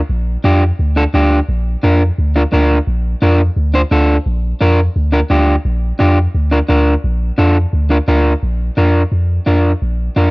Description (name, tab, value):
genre	latin, cumbia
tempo	173 BPM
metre	4/4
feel	straight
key	Bb major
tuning	A4 = 440 Hz
part	punchy sub bass	bass	0.0-10.3 s	Bb1 to F2	-14 LUFS	equal	none
part	electric guitar at the edge of break-up	accompaniment	0.4-10.3 s	D4 to C5	-15 LUFS	equal	none
room	little or no reverb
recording	rough home demo mix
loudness	-11 LUFS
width	side -24 dB against mid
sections	0.0-8.4 A section; 8.4-10.3 B section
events	none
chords	0.0 Bb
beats	| 0.10 0.45 0.79 1.14 | 1.49 1.83 2.18 2.53 | 2.88 3.22 3.57 3.92 | 4.26 4.61 4.96 5.30 | 5.65 6.00 6.34 6.69 | 7.04 7.38 7.73 8.08 | 8.43 8.77 9.12 9.47 | 9.82 10.16